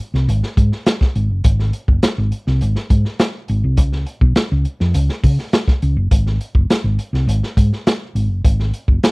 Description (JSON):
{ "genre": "funk", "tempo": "103 BPM", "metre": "4/4", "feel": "straight", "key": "Ab mixolydian", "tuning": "A4 = 440 Hz", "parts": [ { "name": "hollow-body short-scale fingered electric bass", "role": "bass", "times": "0.1-9.1 s", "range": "Gb1 to Db3", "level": "-16 LUFS", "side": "equal", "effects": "none" }, { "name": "crunchy breakbeat drum kit", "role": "drums", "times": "0.1-9.1 s", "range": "hi-hat, kick drum, snare drum", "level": "-16 LUFS", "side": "equal", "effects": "none" } ], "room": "little or no reverb", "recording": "dry, close 1970s-style studio recording", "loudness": "-14 LUFS", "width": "side -30 dB against mid", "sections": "0.0-9.1 A section", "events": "none", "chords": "none" }